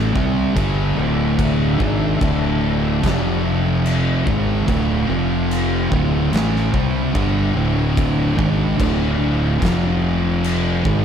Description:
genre	stoner and doom metal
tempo	73 BPM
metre	4/4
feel	straight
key	D minor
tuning	A4 = 440 Hz
part	swarming drone	sustained chords	0.3-11.0 s	D4 to F5	-31 LUFS	right 1 dB	built-in reverb
part	thick fuzz guitar	riff	0.0-11.0 s	D2 to C4	-22 LUFS	left 7 dB	distortion
part	thick fuzz guitar	riff	0.0-11.0 s	D2 to C4	-23 LUFS	right 8 dB	distortion
part	thick fuzz guitar	riff	0.0-11.0 s	D2 to C4	-24 LUFS	equal	distortion
part	fuzz fingered electric bass	bass	0.0-11.0 s	D1 to C2	-23 LUFS	equal	overdrive
part	oversized low-tuned drum kit	drums	0.2-11.0 s	crash cymbal, kick drum, snare drum	-24 LUFS	equal	none
room	small room ambience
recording	none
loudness	-16 LUFS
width	side -8 dB against mid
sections	0.0-11.0 A section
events	none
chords	0.0 D5; 3.0 F5; 4.3 Dm; 5.1 F5; 5.9 Dm; 9.6 F5

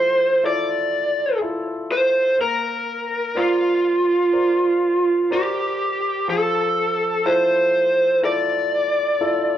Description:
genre	pop ballad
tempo	62 BPM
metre	4/4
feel	straight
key	F major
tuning	A4 = 440 Hz
part	lead guitar through a small cranked amp	melody	0.0-9.6 s	F4 to D5	-18 LUFS	right 1 dB	overdrive, plate reverb
part	clear baby grand piano	accompaniment	0.0-9.6 s	F3 to D5	-28 LUFS	left 2 dB	plate reverb
room	wet studio reverb, RT60 0.6 s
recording	rough home demo mix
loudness	-17 LUFS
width	side -11 dB against mid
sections	0.0-9.6 A section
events	none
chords	0.0 Fmaj7; 2.4 Bbadd9; 6.3 Fmaj7

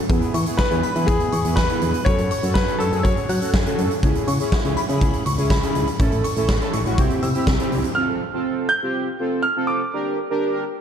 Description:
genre	synth-pop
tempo	122 BPM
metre	4/4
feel	straight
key	unclear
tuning	A4 = 441 Hz
part	analog synth brass	accompaniment	0.1-10.6 s	B3 to B4	-24 LUFS	right 1 dB	chorus
part	solid FM bass	bass	0.1-7.8 s	A1 to F#3	-24 LUFS	equal	none
part	huge arena drum kit	drums	0.1-8.0 s	hi-hat, kick drum, snare drum	-22 LUFS	equal	none
part	shimmering bell with halo	second line	0.3-7.4 s	B5 to F#6	-31 LUFS	left 2 dB	ensemble chorus, tape echo
part	clear concert grand piano	melody	0.6-3.5, 7.9-10.8 s	G#4 to G6	-24 LUFS	equal	tape echo
room	moderate lush hall reverb, RT60 2.0 s, small room ambience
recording	dark, warm production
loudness	-18 LUFS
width	side -8 dB against mid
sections	0.1-8.0 A section; 8.0-10.8 B section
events	none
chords	0.1 E; 2.1 F#m; 4.0 C#m; 6.0 A; 7.0 C; 8.0 Fadd9; 9.9 Gm

